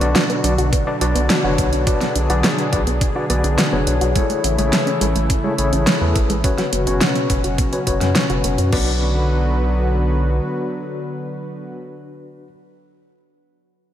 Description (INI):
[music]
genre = synthwave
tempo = 105 BPM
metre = 4/4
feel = straight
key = B dorian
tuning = A4 = 440 Hz
[part]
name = warm analog pad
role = sustained chords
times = 0.0-11.8 s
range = B2 to B4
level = -23 LUFS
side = equal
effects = chorus, sidechain pumping
[part]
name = soft round pluck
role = arpeggios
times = 0.0-9.0 s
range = G#3 to F#4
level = -27 LUFS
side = right 3 dB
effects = chorus, cassette tape, digital delay
[part]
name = overdriven tine electric piano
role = stabs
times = 0.0-12.5 s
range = C#4 to D5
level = -23 LUFS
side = left 3 dB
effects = fast tremolo, low-pass filter, digital delay
[part]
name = round analog bass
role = bass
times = 0.0-10.4 s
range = F#1 to F#2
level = -20 LUFS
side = equal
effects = tube saturation
[part]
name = pop drum kit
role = drums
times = 0.0-8.8 s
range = crash cymbal, hi-hat, snare drum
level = -22 LUFS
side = right 1 dB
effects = overdrive, gated reverb
[part]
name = electronic kick drum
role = drums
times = 0.7-8.8 s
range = none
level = -20 LUFS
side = equal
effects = none
[sound]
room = moderate plate reverb, RT60 3.5 s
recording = bright 1980s-style digital production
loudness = -16 LUFS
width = side -11 dB against mid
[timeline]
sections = 0.0-8.7 A section; 8.7-11.0 B section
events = filter sweep on synth arpeggio sound 0.0-8.7; filter sweep on tine electric piano 0.0-8.7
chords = 0.0 Bm; 4.2 Amaj7; 6.4 F#sus4; 8.7 Bm